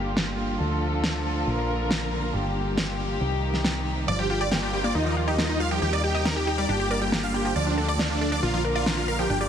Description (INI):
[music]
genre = uplifting trance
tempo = 138 BPM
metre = 4/4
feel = straight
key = G minor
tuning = A4 = 442 Hz
[part]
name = dark chamber string section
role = sustained chords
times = 0.0-9.5 s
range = C3 to Bb4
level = -29 LUFS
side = left 1 dB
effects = low-pass filter
[part]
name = solid FM bass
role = bass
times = 0.0-9.5 s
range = G1 to Eb2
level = -29 LUFS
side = equal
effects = none
[part]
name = electronic snare drum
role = drums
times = 0.2-8.9 s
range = none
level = -30 LUFS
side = equal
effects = low-pass filter on hats, low-pass filter on perc, low-pass filter on snare, low-pass filter on cymbals
[part]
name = big supersaw lead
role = melody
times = 4.1-9.5 s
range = D4 to F5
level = -26 LUFS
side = right 1 dB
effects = phaser, dub echo
[part]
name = wide unison pluck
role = arpeggios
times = 4.1-9.5 s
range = F3 to G5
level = -29 LUFS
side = left 1 dB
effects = cassette tape, dub echo
[part]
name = riser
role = sound effects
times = 9.1-9.5 s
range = none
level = barely audible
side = none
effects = none
[sound]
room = moderate huge ambient reverb, RT60 6.3 s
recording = heavily compressed radio sound, multiband compression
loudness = -23 LUFS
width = side -8 dB against mid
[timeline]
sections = 0.0-9.5 A section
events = none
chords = 0.0 Gm7; 0.6 Dm; 1.5 Bb; 2.3 Gm7; 3.2 Cm; 4.1 Gm7; 5.0 Ebadd9; 5.8 Cm/Eb; 6.7 Gm7; 7.6 Dm; 8.4 Bb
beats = 0.17 | 0.60 1.04 1.47 1.91 | 2.34 2.78 3.21 3.65 | 4.08 4.51 4.95 5.38 | 5.82 6.25 6.69 7.12 | 7.56 7.99 8.43 8.86 | 9.30